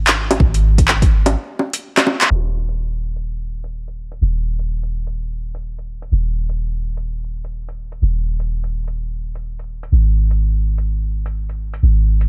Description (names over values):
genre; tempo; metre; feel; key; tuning
future garage; 126 BPM; 4/4; swing 61% on 16ths; unclear; A4 = 440 Hz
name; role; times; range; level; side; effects
soft 808-style bass; bass; 0.0-12.3 s; Eb1 to Ab1; -20 LUFS; equal; sidechain pumping
deep house drum kit; drums; 0.1-12.3 s; bongos, handclaps, hi-hat; -18 LUFS; equal; overdrive, low-pass filter on hats, studio reverb, low-pass filter on snare, low-pass filter on perc
electronic kick drum; drums; 0.4-1.1 s; none; -17 LUFS; equal; overdrive, studio reverb
room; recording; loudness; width
digital ambience; vinyl crackle, low-pass filter; -19 LUFS; mono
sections
0.0-2.3 A section; 2.3-12.3 B section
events
break 1.4-2.3; drum fill 1.9-2.3; band accent 2.2; filter sweep 2.3-12.3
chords
none